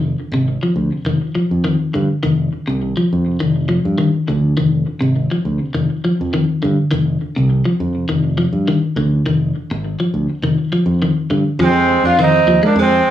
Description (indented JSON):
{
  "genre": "afrobeat",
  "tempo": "102 BPM",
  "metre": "4/4",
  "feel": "straight",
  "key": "F dorian",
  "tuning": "A4 = 440 Hz",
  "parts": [
    { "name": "electric guitar at the edge of break-up", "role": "arpeggios", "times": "0.0-12.9 s", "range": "C3 to Ab3", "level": "-16 LUFS", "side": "left 2 dB", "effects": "cassette tape, analog delay" },
    { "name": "modern bright fingered electric bass", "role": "bass", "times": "0.0-13.0 s", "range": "F1 to G2", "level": "-19 LUFS", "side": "right 1 dB", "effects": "none" },
    { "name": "brilliant trombone", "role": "melody", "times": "11.6-13.1 s", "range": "C4 to F4", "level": "-14 LUFS", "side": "right 3 dB", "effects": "cassette tape" },
    { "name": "pan flute", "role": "second line", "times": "11.6-13.1 s", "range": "C5 to F5", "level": "-21 LUFS", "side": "left 3 dB", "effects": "cassette tape" },
    { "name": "raspy tenor saxophone", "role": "second line", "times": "11.6-13.1 s", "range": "Ab3 to D4", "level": "-20 LUFS", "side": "right 7 dB", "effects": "cassette tape, analog delay" }
  ],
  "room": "light reverb",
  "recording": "home recording on cassette, studio reverb",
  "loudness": "-14 LUFS",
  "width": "side -11 dB against mid",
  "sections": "0.0-11.6 A section; 11.6-13.1 B section",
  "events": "none",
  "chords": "0.0 Fm7; 1.1 Ebmaj7sus2/F; 2.2 F5; 3.4 Ebmaj9/F; 4.6 Fm7; 5.8 Ebmaj7sus2/F; 6.9 F5; 8.1 Ebmaj9/F; 9.3 Fm7; 10.4 Ebmaj7sus2/F; 11.6 Fm7",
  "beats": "0.48 1.06 1.65 | 2.24 2.82 3.41 4.00 | 4.58 5.17 5.75 6.34 | 6.92 7.51 8.10 8.68 | 9.27 9.85 10.43 11.02 | 11.60 12.19 12.77"
}